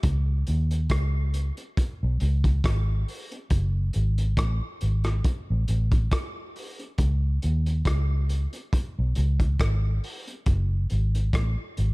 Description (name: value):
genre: dub reggae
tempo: 69 BPM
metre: 4/4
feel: swing 55% on 16ths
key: unclear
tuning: A4 = 440 Hz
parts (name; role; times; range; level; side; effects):
- vintage muted fingered electric bass; bass; 0.0-11.9 s; F#1 to D#2; -23 LUFS; equal; none
- crunchy breakbeat drum kit; drums; 0.0-11.9 s; hi-hat, kick drum, rim click; -27 LUFS; equal; none
room: little or no reverb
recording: dark, warm production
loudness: -23 LUFS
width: side -25 dB against mid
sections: 0.0-11.9 A section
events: none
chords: none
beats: | 0.04 0.91 1.77 2.64 | 3.51 4.38 5.25 6.12 | 6.99 7.86 8.72 9.59 | 10.46 11.33